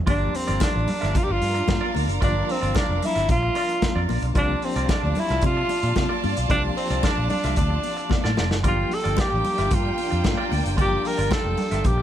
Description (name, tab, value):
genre	disco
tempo	112 BPM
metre	4/4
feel	straight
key	unclear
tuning	A4 = 440 Hz
part	breathy tenor saxophone	melody	0.1-12.0 s	C4 to Bb4	-26 LUFS	equal	none
part	rich studio violin section	second line	0.1-12.0 s	Bb3 to A5	-30 LUFS	equal	none
part	overdriven reed electric piano	accompaniment	0.1-12.0 s	F3 to G4	-33 LUFS	left 3 dB	fast tremolo
part	semi-hollow electric guitar	accompaniment	0.1-12.0 s	F4 to E5	-32 LUFS	right 2 dB	spring reverb
part	fingered electric bass	bass	0.1-12.0 s	F1 to C3	-25 LUFS	equal	none
part	vintage drum kit	drums	0.1-12.0 s	hi-hat, kick drum, snare drum	-26 LUFS	equal	none
part	congas	percussion	0.1-12.0 s	none	-32 LUFS	left 5 dB	none
room	little or no reverb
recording	none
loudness	-20 LUFS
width	side -11 dB against mid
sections	0.1-12.0 A section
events	drum fill 8.1-8.6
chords	0.1 Gm7; 4.4 C9sus4; 8.6 Gm7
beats	| 0.07 0.61 1.15 1.68 | 2.22 2.75 3.29 3.82 | 4.36 4.89 5.43 5.96 | 6.50 7.03 7.57 8.10 | 8.64 9.17 9.71 10.24 | 10.78 11.31 11.84